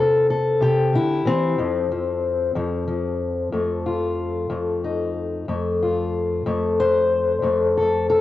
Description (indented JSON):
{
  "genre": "acoustic country blues, solo or duo",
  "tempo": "62 BPM (dotted quarters)",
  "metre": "12/8",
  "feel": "straight",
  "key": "unclear",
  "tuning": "A4 = 440 Hz",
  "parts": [
    { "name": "fingerpicked steel-string acoustic guitar", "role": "solo", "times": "0.0-8.2 s", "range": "F2 to C5", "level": "-19 LUFS", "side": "left 2 dB", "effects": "cassette tape" }
  ],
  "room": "wet booth ambience, RT60 0.3 s",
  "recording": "home recording on cassette",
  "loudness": "-19 LUFS",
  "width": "side -14 dB against mid",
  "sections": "0.0-8.2 A section",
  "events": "none",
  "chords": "0.0 C; 1.6 F"
}